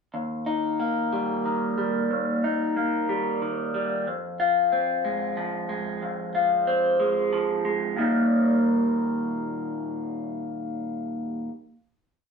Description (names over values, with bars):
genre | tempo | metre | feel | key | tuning
post-rock | 92 BPM | 3/4 | straight | Eb major | A4 = 440 Hz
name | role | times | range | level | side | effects
electric guitar through a small old amp | solo | 0.1-11.5 s | Eb2 to F4 | -23 LUFS | left 1 dB | phaser
room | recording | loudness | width
wet small room reverb, RT60 0.6 s | band playing live in one room | -23 LUFS | side -5 dB against mid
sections
0.1-8.0 A section; 8.0-11.9 final chord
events
none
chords
0.1 Eb; 4.1 Fm; 8.0 Eb